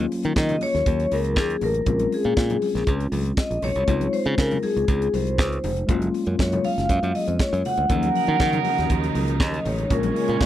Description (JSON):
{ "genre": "disco", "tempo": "120 BPM", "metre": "4/4", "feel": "straight", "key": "Eb dorian", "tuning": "A4 = 439 Hz", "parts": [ { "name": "mellow tine electric piano", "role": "accompaniment", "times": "0.0-10.5 s", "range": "F3 to F4", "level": "-28 LUFS", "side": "left 3 dB", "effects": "medium stereo tremolo" }, { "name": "modern bright fingered electric bass", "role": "bass", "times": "0.0-10.5 s", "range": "F1 to Eb3", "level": "-25 LUFS", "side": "right 1 dB", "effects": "none" }, { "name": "congas", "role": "percussion", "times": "0.0-10.5 s", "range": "none", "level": "-32 LUFS", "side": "left 5 dB", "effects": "none" }, { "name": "tight funk drum kit", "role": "drums", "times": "0.1-10.5 s", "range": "hi-hat, kick drum, snare drum", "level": "-25 LUFS", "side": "right 1 dB", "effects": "none" }, { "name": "vibraphone with medium hard mallets", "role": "melody", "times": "0.4-10.5 s", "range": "Ab4 to Gb5", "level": "-24 LUFS", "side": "left 2 dB", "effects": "none" }, { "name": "clear studio string section", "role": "sustained chords", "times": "7.9-10.5 s", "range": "Db3 to Eb4", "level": "-31 LUFS", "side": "right 1 dB", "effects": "none" }, { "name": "mellow horn section", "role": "stabs", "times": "7.9-10.5 s", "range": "Gb3 to Db5", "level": "-28 LUFS", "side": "right 18 dB", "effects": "none" } ], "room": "little or no reverb", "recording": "dry, close 1970s-style studio recording", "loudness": "-20 LUFS", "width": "side -12 dB against mid", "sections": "0.0-10.5 A section", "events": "vibraphone solo 0.0-10.5", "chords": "0.0 Ebm7; 1.9 Bbm9; 3.9 Dbmaj7; 5.9 Gbmaj7; 7.9 Ebm7; 9.9 Bbm7" }